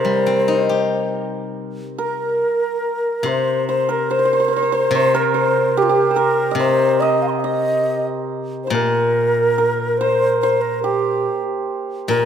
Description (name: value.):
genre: chinese traditional, Chinese chamber ensemble.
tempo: 71 BPM.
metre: 2/4.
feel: rubato.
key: C yu mode.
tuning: A4 = 443 Hz.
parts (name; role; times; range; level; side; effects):
xiao; melody; 0.0-12.3 s; F4 to C6; -19 LUFS; left 2 dB; none.
hammered dulcimer; second line; 0.0-12.3 s; G4 to F5; -20 LUFS; right 5 dB; none.
steel-string zither; accompaniment; 0.0-12.3 s; Bb2 to G4; -24 LUFS; left 4 dB; none.
room: moderate scoring stage reverb, RT60 1.7 s.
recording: none.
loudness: -16 LUFS.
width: side -8 dB against mid.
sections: 0.0-1.6 A section; 1.6-12.3 B section.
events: none.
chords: none.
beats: 0.70 | 1.57 2.42 | 3.26 4.10 | 4.93 5.75 | 6.59 7.43 | 8.29 9.16 | 10.01 10.85 | 11.68.